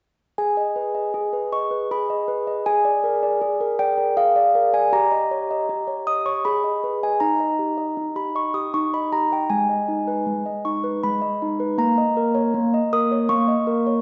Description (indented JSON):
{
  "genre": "classical, lullaby for handbells",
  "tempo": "79 BPM",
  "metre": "3/4",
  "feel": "straight",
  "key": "G# minor",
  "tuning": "A4 = 438 Hz",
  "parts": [
    { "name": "handbells", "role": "solo", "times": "0.4-14.0 s", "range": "G#3 to D#6", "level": "-22 LUFS", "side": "equal", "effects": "none" }
  ],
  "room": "wet recital hall reverb, RT60 1.6 s",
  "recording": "recorded in a church or concert hall, nothing above 7.7 kHz",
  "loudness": "-22 LUFS",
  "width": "mono",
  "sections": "0.4-14.0 A section",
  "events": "none",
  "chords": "0.4 G#m; 2.7 A#7/G#; 4.9 D#7/G; 6.4 G#m; 7.2 D#; 9.5 G#m; 11.8 D#5/A#"
}